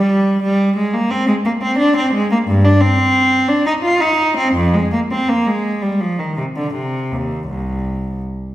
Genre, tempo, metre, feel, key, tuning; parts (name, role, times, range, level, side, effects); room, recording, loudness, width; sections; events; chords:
classical, baroque-style suite movement for unaccompanied cello; 78-92 BPM; 3/4; rubato; C minor; A4 = 440 Hz
rich cello; solo; 0.0-8.2 s; C2 to F4; -14 LUFS; equal
wet recital hall reverb, RT60 1.5 s; heard from further back in the room; -14 LUFS; side -14 dB against mid
0.0-8.5 A section